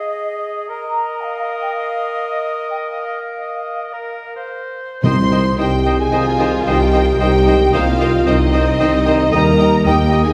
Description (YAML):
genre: cinematic, heroic adventure film score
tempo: 112 BPM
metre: 4/4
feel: straight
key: C minor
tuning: A4 = 439 Hz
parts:
  - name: bright clarinet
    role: second line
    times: 0.0-10.2 s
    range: Ab4 to Eb5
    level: -28 LUFS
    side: equal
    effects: none
  - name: clear oboe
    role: second line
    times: 0.0-10.2 s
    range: Bb4 to Eb5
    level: -28 LUFS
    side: equal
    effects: none
  - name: mellow hollow large flute ensemble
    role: second line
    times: 0.0-10.3 s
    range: Eb5 to C6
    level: -27 LUFS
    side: equal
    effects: none
  - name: rich symphonic violin section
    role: melody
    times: 5.0-10.3 s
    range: Eb5 to C6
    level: -27 LUFS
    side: equal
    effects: none
  - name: warm symphonic violin section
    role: second line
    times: 5.0-10.2 s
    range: Eb5 to G5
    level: -31 LUFS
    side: equal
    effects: none
  - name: dark symphonic viola section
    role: accompaniment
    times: 5.0-10.2 s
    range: Eb3 to Eb4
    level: -27 LUFS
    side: equal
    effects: none
  - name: clear trombone section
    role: sustained chords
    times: 5.0-10.3 s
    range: Eb3 to Eb4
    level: -29 LUFS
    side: equal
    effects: none
  - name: mellow French horn section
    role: sustained chords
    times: 5.0-10.3 s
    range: Eb4 to C5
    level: -20 LUFS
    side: equal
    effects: none
  - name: warm studio double bass section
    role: bass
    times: 5.0-10.3 s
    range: C2 to Eb2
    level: -22 LUFS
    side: equal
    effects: none
  - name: warm tuba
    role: bass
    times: 5.0-10.3 s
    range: C2 to Eb2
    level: -22 LUFS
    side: equal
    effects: none
  - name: timpani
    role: percussion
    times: 5.0-5.8 s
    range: C3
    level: -21 LUFS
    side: equal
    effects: none
  - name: dark symphonic cello section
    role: bass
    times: 6.1-10.3 s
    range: G3 to F4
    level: -24 LUFS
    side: equal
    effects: none
room: wet scoring stage reverb, RT60 1.4 s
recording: heard from further back in the room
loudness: -16 LUFS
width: mono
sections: 0.0-5.0 A section; 5.0-10.3 A section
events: none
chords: 0.0 Ab5; 0.7 Bbsus4; 5.0 Cm; 9.3 Eb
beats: 0.17 | 0.70 1.23 1.75 2.29 | 2.84 3.39 3.95 4.49 | 5.04 5.59 6.13 6.67 | 7.20 7.74 8.27 8.79 | 9.32 9.85